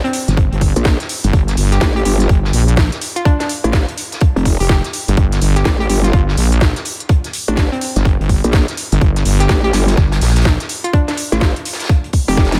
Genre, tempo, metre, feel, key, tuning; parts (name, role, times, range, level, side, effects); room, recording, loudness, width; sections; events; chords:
bass house; 125 BPM; 4/4; swing 62% on 16ths; G minor; A4 = 439 Hz
hollow square pluck; melody; 0.0-12.5 s; C4 to G4; -26 LUFS; equal; chorus, diffuse ambient delay
vintage drum kit; drums; 0.0-12.6 s; hi-hat, snare drum; -31 LUFS; equal; sidechain pumping on hats, high-pass filter on hats, high-pass filter on snare, high-pass filter on room
garage drum kit; drums; 0.1-12.6 s; hi-hat, snare drum; -24 LUFS; equal
wobble bass; bass; 0.3-10.6 s; F1 to Bb1; -16 LUFS; equal; chorus, tube saturation, sidechain pumping
electronic kick drum; drums; 0.4-12.5 s; -17 LUFS; equal
growl bass; bass; 0.8-12.6 s; F1 to Bb1; -17 LUFS; equal; chorus, tube saturation, sidechain pumping
digital ambience; -15 LUFS; mono
0.0-12.6 A section
drum fill 12.4
0.0 Gmadd9